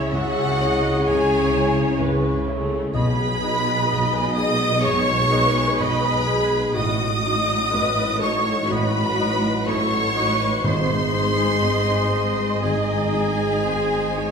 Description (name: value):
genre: cinematic, emotional film score for orchestra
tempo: 62 BPM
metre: 4/4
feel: rubato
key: unclear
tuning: A4 = 436 Hz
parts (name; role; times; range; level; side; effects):
- warm studio violin section; melody; 0.0-14.3 s; E5 to D#6; -26 LUFS; left 2 dB; none
- dark clarinet; second line; 0.0-14.3 s; F#4 to G#4; -30 LUFS; equal; none
- dark cor anglais; second line; 0.0-14.3 s; C#5 to D#5; -32 LUFS; right 3 dB; none
- flute section; second line; 0.0-14.3 s; E5 to D#6; -27 LUFS; right 1 dB; none
- warm studio violin section; second line; 0.0-14.3 s; E4 to D#5; -28 LUFS; left 2 dB; none
- dark concert grand piano; accompaniment; 0.0-14.3 s; G#1 to D#5; -27 LUFS; equal; none
- warm studio viola section; accompaniment; 0.0-14.3 s; A3 to E5; -29 LUFS; right 2 dB; none
- dark French horn section; sustained chords; 0.0-14.3 s; F#3 to G#4; -30 LUFS; left 3 dB; none
- concert harp; arpeggios; 0.0-14.3 s; G#2 to D#6; -31 LUFS; left 6 dB; none
- dark studio double bass section; bass; 0.0-14.3 s; G#1 to C#2; -28 LUFS; right 3 dB; none
- warm studio cello section; bass; 0.0-14.3 s; G#2 to C#3; -29 LUFS; right 1 dB; none
- timpani; percussion; 0.0-0.6, 10.6-12.1 s; G#2 to C#3; -28 LUFS; right 1 dB; none
room: wet recital hall reverb, RT60 1.6 s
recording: recorded in a church or concert hall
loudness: -18 LUFS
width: side -6 dB against mid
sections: 0.0-14.3 A section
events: none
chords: 0.0 C#m; 3.0 G#m/B; 6.8 D#dim/A; 10.6 G#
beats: 0.13 1.07 2.01 | 2.95 3.90 4.85 5.79 | 6.76 7.73 8.70 9.67 | 10.64 11.62 12.61 13.63